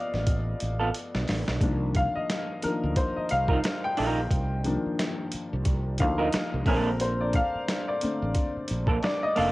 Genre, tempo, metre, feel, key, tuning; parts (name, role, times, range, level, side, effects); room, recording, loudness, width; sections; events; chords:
R&B, neo-soul; 89 BPM; 4/4; swing 57% on 16ths; C dorian; A4 = 440 Hz
warm upright piano; accompaniment; 0.0-9.5 s; D3 to G5; -29 LUFS; left 2 dB; cassette tape
fretless electric bass; bass; 0.1-9.5 s; F1 to D2; -29 LUFS; equal; lush chorus
boom bap sampler-style drum kit; drums; 0.1-9.5 s; hi-hat, kick drum, snare drum; -28 LUFS; equal; cassette tape
electric guitar through a small old amp; second line; 0.8-9.5 s; Bb3 to Bb4; -28 LUFS; right 3 dB; lush chorus, cassette tape
light reverb; home recording on cassette; -24 LUFS; side -19 dB against mid
0.0-9.5 A section
upright piano solo 0.0-9.5; drum fill 0.9-1.6
0.0 G9 (rootless); 1.6 Cm11; 6.7 Bbmaj7